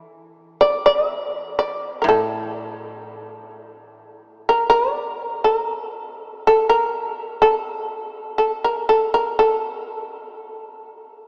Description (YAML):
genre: japanese traditional, Japanese chamber music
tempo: 61 BPM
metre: 4/4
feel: rubato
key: unclear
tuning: A4 = 441 Hz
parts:
  - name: koto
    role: accompaniment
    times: 0.0-5.0 s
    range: A2 to E3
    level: -33 LUFS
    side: equal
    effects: none
  - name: shamisen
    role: melody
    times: 0.6-10.9 s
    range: A4 to E5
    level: -21 LUFS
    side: equal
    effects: none
room: wet cathedral reverb, RT60 5.9 s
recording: small speaker sound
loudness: -20 LUFS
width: mono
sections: 0.0-11.3 A section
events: none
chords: none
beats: | 0.10 1.09 2.07 3.05 | 4.02 4.99 5.95 6.93 | 7.91 8.89 9.88